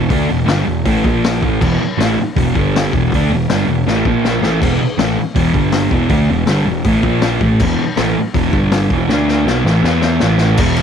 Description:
garage rock duo or trio; 160 BPM; 4/4; straight; A4 = 440 Hz
thick fuzz guitar; riff; 0.0-10.8 s; E2 to E4; -15 LUFS; right 1 dB; distortion
fuzz picked electric bass; bass; 0.0-10.8 s; E1 to E2; -19 LUFS; right 1 dB; overdrive
raw garage drum kit; drums; 0.1-10.8 s; crash cymbal, hi-hat, kick drum, ride cymbal, snare drum; -18 LUFS; left 3 dB
small room ambience; 1960s-style stereo; -12 LUFS; side -8 dB against mid
0.0-10.6 A section
drum fill 3.9-4.6, 9.1-10.6
0.0 E5; 1.1 A#5; 1.4 E5; 2.6 G5; 2.9 E5; 4.0 A#5; 4.4 E5; 5.5 G5; 5.9 E5; 7.0 A#5; 7.4 E5; 8.5 G5; 8.9 E5; 9.1 D5; 9.5 E5; 10.2 A5

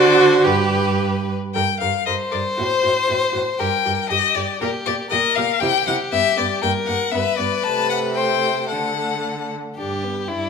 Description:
quick classical-period movement for string quartet; 108-120 BPM; 2/4; rubato; G minor, G major from 5.6 s; A4 = 440 Hz
rich violin; melody; 0.0-10.5 s; Bb4 to A5; -21 LUFS; left 9 dB
rich violin; second line; 0.0-10.5 s; E4 to C5; -23 LUFS; left 4 dB
rich viola; accompaniment; 0.0-10.5 s; A3 to Bb4; -22 LUFS; right 3 dB
rich cello; bass; 0.0-10.5 s; G2 to D3; -25 LUFS; right 5 dB
wet recital hall reverb, RT60 1.4 s; -17 LUFS; side -6 dB against mid
0.0-1.5 A section; 1.5-9.8 B section
0.5 G; 1.5 Gm; 2.6 Am6; 3.6 Gm; 4.6 Gm/Bb; 5.6 C; 6.1 G; 6.6 Gmmaj7; 7.1 G; 7.7 Am/C; 8.7 D; 9.8 G

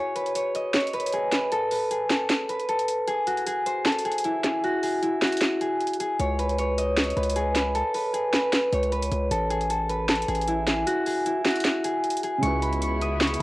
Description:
hip hop, trap; 154 BPM; 4/4; half-time; A4 = 440 Hz
concert harp; melody; 0.0-13.4 s; E4 to D#6; -24 LUFS; equal; cassette tape
trap drum kit; drums; 0.2-13.4 s; handclaps, hi-hat, snare drum; -27 LUFS; equal; cassette tape
distorted 808-style bass; bass; 6.2-13.4 s; A1 to C#2; -28 LUFS; equal; distortion
dark concert grand piano; accompaniment; 12.4-13.4 s; C#3 to B4; -30 LUFS; right 2 dB; cassette tape
dark chamber string section; sustained chords; 12.4-13.4 s; C#3 to E4; -32 LUFS; left 2 dB; cassette tape
light reverb, small room ambience; home recording on cassette; -22 LUFS; side -19 dB against mid
0.0-12.4 A section
break 0.0-6.2; kick muted 5.4-6.2, 10.9-12.4
0.0 N.C.; 6.2 B69/C#; 9.3 F#m11/A; 12.4 C#m7

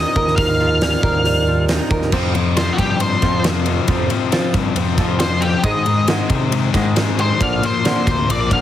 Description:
quiet-loud alternative rock; 136 BPM; 4/4; straight; F dorian; A4 = 440 Hz
octave-fuzz lead guitar; melody; 0.0-8.6 s; Gb4 to F5; -21 LUFS; left 1 dB; distortion, tape echo
fingerpicked steel-string acoustic guitar; arpeggios; 0.0-8.6 s; Ab2 to Bb4; -23 LUFS; right 3 dB
growling picked electric bass; bass; 0.0-8.6 s; Bb1 to C3; -21 LUFS; equal; overdrive
huge arena drum kit; drums; 0.2-8.6 s; crash cymbal, hi-hat, kick drum, ride cymbal, snare drum; -20 LUFS; equal
biting overdriven guitar; riff; 2.1-8.6 s; F2 to Bb3; -21 LUFS; left 9 dB
light reverb; heavily compressed radio sound; -15 LUFS; side -12 dB against mid
0.0-2.1 A section; 2.1-8.6 B section
lead electric guitar solo 2.1-8.6
0.0 Ebadd9; 2.1 Fsus2; 5.7 Ab; 7.4 Bb

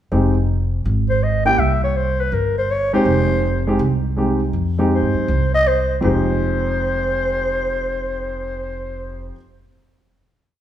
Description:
jazz, small-group swing and bop; 162 BPM; 4/4; swing 66% on 8ths; F minor; A4 = 440 Hz
warm grand piano; accompaniment; 0.1-9.4 s; F2 to G4; -21 LUFS; right 1 dB
upright bass; bass; 0.1-9.3 s; F1 to G2; -21 LUFS; equal
growling clarinet; melody; 1.1-9.3 s; Bb4 to G5; -20 LUFS; equal
moderate large studio reverb, RT60 1.3 s; band playing live in one room; -16 LUFS; side -11 dB against mid
0.1-6.0 A section; 6.0-9.0 final chord
0.1 Fm9; 1.6 C5; 3.1 Fm9

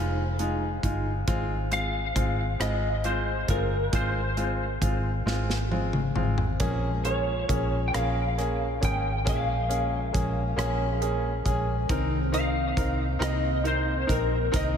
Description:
six-eight pop ballad; 45 BPM (dotted quarters); 6/8; straight; A4 = 440 Hz
lightly driven lead guitar; melody; 0.0-14.8 s; Bb4 to G5; -31 LUFS; left 1 dB; ensemble chorus, ping-pong delay
bright concert grand piano; accompaniment; 0.0-14.8 s; Ab3 to Bb4; -30 LUFS; equal
vintage muted fingered electric bass; bass; 0.0-14.8 s; F1 to C2; -28 LUFS; equal
modern studio drum kit; drums; 0.4-14.7 s; hi-hat, kick drum, rim click, snare drum, toms; -31 LUFS; equal
picked steel-string acoustic guitar; arpeggios; 6.6-14.8 s; Bb2 to Ab4; -34 LUFS; equal; lush chorus, ping-pong delay
moderate cathedral reverb, RT60 4.4 s; dreamy mix soaked in reverb; -24 LUFS; side -8 dB against mid
0.0-14.8 A section
drum fill 5.3-6.6
0.0 Fm7; 1.3 Ab6; 6.6 Bbm7; 11.9 Cm7

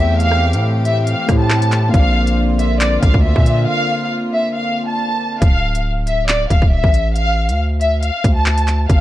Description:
hip hop, drill; 138 BPM; 4/4; half-time; D minor; A4 = 439 Hz
warm symphonic violin section; melody; 0.0-9.0 s; D5 to A5; -19 LUFS; equal; low-pass filter, tape echo
soft electric-piano-like synth keys; accompaniment; 0.0-5.4 s; E3 to D5; -23 LUFS; left 2 dB; chorus, low-pass filter
warm studio string section; sustained chords; 0.0-5.4 s; D3 to G4; -24 LUFS; equal
distorted 808-style bass; bass; 0.0-9.0 s; D1 to Bb2; -16 LUFS; equal; distortion
drill drum kit; drums; 0.2-9.0 s; handclaps, hi-hat, kick drum, rim click; -15 LUFS; equal
digital ambience; dark, warm production; -13 LUFS; side -14 dB against mid
0.0-5.4 A section; 5.4-9.0 B section
break 3.7-5.4
0.0 Am7; 1.9 Bbadd9; 5.4 Dm

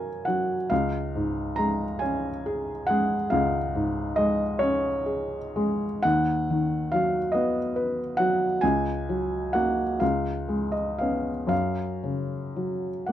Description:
classical, romantic nocturne for solo piano; 38-49 BPM (dotted quarters); 12/8; rubato; A4 = 440 Hz
felt-muted upright piano; solo; 0.0-13.1 s; C#2 to A#5; -24 LUFS; equal
light reverb; dark, warm production; -24 LUFS; side -11 dB against mid
0.0-13.1 A section
0.0 F#; 0.7 C#; 6.0 B/D#; 8.6 F#/C#; 10.0 C#7; 11.5 F#5

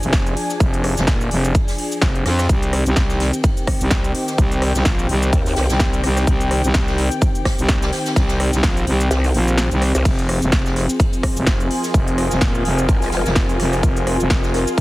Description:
bass house; 127 BPM; 4/4; swing 56% on 16ths; F dorian; A4 = 440 Hz
sweeping resonant pad; sustained chords; 0.0-14.8 s; Eb3 to Ab4; -25 LUFS; left 1 dB; chorus, sidechain pumping
growling FM bass; bass; 0.0-14.7 s; Eb1 to F2; -19 LUFS; equal; tube saturation, sidechain pumping
big-room dance drum kit; drums; 0.0-14.8 s; crash cymbal, hi-hat, rim click, shaker, snare drum; -25 LUFS; equal
ethereal airy pad; texture; 0.0-14.8 s; F4 to Ab5; -29 LUFS; left 2 dB; ensemble chorus, built-in reverb, sidechain pumping
electronic kick drum; drums; 0.1-14.8 s; -18 LUFS; equal
jazz brush drum kit; drums; 0.1-14.8 s; ride cymbal, snare drum; -33 LUFS; left 1 dB; sidechain pumping on cymbals, high-pass filter on cymbals, high-pass filter on snare, high-pass filter on room
growl bass; bass; 5.3-5.7, 9.1-10.0, 12.9-13.2 s; F1 to Eb2; -19 LUFS; equal; chorus, overdrive, sidechain pumping
light reverb; heavily compressed radio sound, multiband compression; -15 LUFS; side -18 dB against mid
0.0-14.8 A section
kick drops out 9.1-10.1
0.0 Fm; 2.5 Cm; 10.1 Fm

